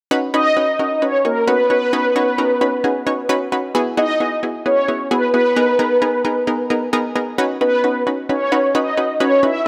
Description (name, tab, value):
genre	pop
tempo	132 BPM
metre	4/4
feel	straight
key	B major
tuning	A4 = 440 Hz
part	analog pluck	accompaniment	0.1-9.6 s	B3 to C#5	-22 LUFS	equal	chorus
part	mellow synth brass	melody	0.3-9.7 s	A#4 to E5	-19 LUFS	equal	chorus
room	moderate plate reverb, RT60 3.0 s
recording	none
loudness	-17 LUFS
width	mono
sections	0.1-7.4 A section; 7.4-9.7 B section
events	none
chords	0.1 Badd9; 3.7 Eadd9; 5.6 G#madd9; 7.4 Badd9